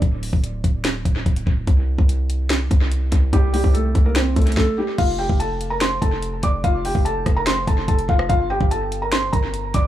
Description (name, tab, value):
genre	hip hop, trap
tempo	145 BPM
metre	4/4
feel	half-time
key	F major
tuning	A4 = 439 Hz
part	hard-hitting 808-style bass	bass	0.0-9.9 s	D1 to C2	-22 LUFS	equal	none
part	trap drum kit	drums	0.0-9.8 s	crash cymbal, hi-hat, kick drum, rim click, snare drum	-20 LUFS	equal	analog delay
part	felt-muted upright piano	melody	3.3-9.9 s	G3 to D6	-22 LUFS	equal	analog delay
room	little or no reverb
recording	echo-heavy mix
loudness	-17 LUFS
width	side -12 dB against mid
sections	0.0-5.0 A section; 5.0-9.9 B section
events	break 0.0-3.3; stop 4.6-5.0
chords	0.0 N.C.; 1.7 C5; 5.0 F; 8.3 Gm